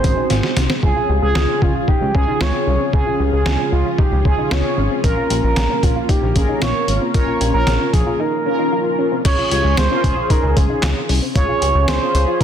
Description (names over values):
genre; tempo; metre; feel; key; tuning
synth-pop; 114 BPM; 4/4; straight; Bb dorian; A4 = 440 Hz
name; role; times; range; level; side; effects
expressive synth lead; melody; 0.0-12.4 s; F4 to Db5; -21 LUFS; right 3 dB; chorus, ping-pong delay
mellow synth brass; accompaniment; 0.0-12.4 s; C4 to Db5; -24 LUFS; left 2 dB; chorus, phaser
string machine, cellos; sustained chords; 0.0-9.2 s; Db3 to Ab4; -26 LUFS; equal; ensemble chorus
soft round pluck; arpeggios; 0.0-12.4 s; C4 to Ab4; -27 LUFS; left 3 dB; chorus, ping-pong delay
chorused synth bass; bass; 0.0-12.3 s; Ab1 to Db2; -18 LUFS; equal; none
trip hop sampler-style drum kit; drums; 0.0-12.4 s; crash cymbal, handclaps, hi-hat, kick drum, snare drum; -19 LUFS; equal; none
room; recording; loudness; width
light reverb, digital ambience; dense, heavily limited modern master; -14 LUFS; side -9 dB against mid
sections
0.8-9.2 A section; 9.2-12.4 B section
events
drum fill 0.3-0.8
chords
0.0 Ab7; 0.8 Db; 5.0 Bbm